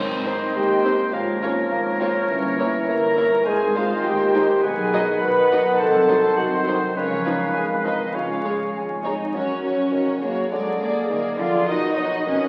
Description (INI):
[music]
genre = cinematic, playful, whimsical film cue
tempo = 103 BPM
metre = 2/4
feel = straight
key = Ab major, F# major from 4.6 s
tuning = A4 = 440 Hz
[part]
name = bright oboe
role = second line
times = 0.0-9.0 s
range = Bb4 to C#5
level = -30 LUFS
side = equal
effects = none
[part]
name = flute section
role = second line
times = 0.0-9.1 s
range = Db5 to A#5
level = -33 LUFS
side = equal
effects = none
[part]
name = warm studio violin section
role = second line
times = 0.0-12.5 s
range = Bb4 to B5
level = -35 LUFS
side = equal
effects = none
[part]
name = mellow bassoon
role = accompaniment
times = 0.0-12.5 s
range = C#3 to F#3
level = -30 LUFS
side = equal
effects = none
[part]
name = warm French horn section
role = sustained chords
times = 0.0-12.5 s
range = Bb3 to D#5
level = -25 LUFS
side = equal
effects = none
[part]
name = concert harp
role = arpeggios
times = 0.0-12.5 s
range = F#2 to D#6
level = -33 LUFS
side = equal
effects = none
[part]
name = rich studio double bass section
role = bass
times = 0.0-12.3 s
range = G1 to F#2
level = -39 LUFS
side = equal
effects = none
[part]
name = warm studio cello section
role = bass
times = 0.0-12.5 s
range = Eb2 to E#4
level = -32 LUFS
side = equal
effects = none
[part]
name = warm studio violin section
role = melody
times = 0.3-12.5 s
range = B4 to D#5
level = -32 LUFS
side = equal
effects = none
[part]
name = rich studio viola section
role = accompaniment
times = 0.3-12.5 s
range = E#3 to G#4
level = -34 LUFS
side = equal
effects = none
[part]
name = triangle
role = percussion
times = 9.3-10.5 s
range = none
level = -37 LUFS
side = equal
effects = none
[sound]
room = wet scoring stage reverb, RT60 1.5 s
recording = very old 78 rpm record, vinyl crackle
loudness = -21 LUFS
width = mono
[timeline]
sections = 0.0-9.3 A section; 9.3-12.5 B section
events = none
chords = 0.0 Ab; 1.1 Bbm7/Ab; 2.3 Gdim7; 3.5 Ab; 4.6 G#m7/B; 5.8 Cdim7; 7.0 C#9; 8.1 C#; 9.3 F#; 10.5 A#7/F#; 11.7 B